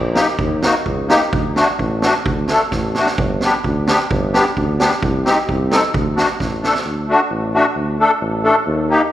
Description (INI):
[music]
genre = klezmer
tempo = 130 BPM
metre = 2/4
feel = straight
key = D phrygian dominant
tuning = A4 = 440 Hz
[part]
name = warm tuba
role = bass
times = 0.0-8.9 s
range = G1 to Eb2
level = -21 LUFS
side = equal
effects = none
[part]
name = musette accordion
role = accompaniment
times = 0.1-9.0 s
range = A3 to A4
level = -16 LUFS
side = left 1 dB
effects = none
[part]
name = street-band drum kit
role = drums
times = 0.2-6.9 s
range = kick drum, snare drum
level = -21 LUFS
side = right 2 dB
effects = none
[sound]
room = moderate scoring stage reverb, RT60 1.9 s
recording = recorded in a church or concert hall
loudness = -14 LUFS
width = side -13 dB against mid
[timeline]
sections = 0.0-6.9 A section; 6.9-9.1 B section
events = speeding up 0.0-9.1; drum fill 2.7-3.2, 6.4-6.9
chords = 0.0 Eb; 1.3 D; 3.2 G; 5.0 Cm; 5.9 D; 6.9 D5